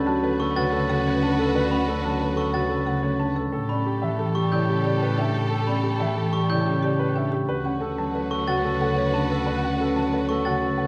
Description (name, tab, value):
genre	classical, minimalist pattern music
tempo	182 BPM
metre	6/4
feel	straight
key	D major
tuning	A4 = 440 Hz
part	warm baby grand piano	melody	0.0-10.9 s	G4 to A5	-32 LUFS	equal	none
part	concert harp	accompaniment	0.0-10.9 s	C#3 to C#4	-28 LUFS	equal	none
part	warm studio violin section	sustained chords	0.0-10.9 s	F#4 to B4	-34 LUFS	equal	none
part	rich double bass	bass	0.0-10.9 s	D2 to A2	-31 LUFS	equal	none
part	marimba with medium mallets	arpeggios	0.1-10.9 s	C#4 to A4	-33 LUFS	equal	none
part	glockenspiel with hard plastic mallets	arpeggios	0.4-10.7 s	B5 to A6	-33 LUFS	equal	none
room	moderate scoring stage reverb, RT60 1.9 s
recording	none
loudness	-24 LUFS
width	mono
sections	0.0-10.9 A section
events	none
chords	0.0 D6; 3.5 A9sus4; 7.5 D6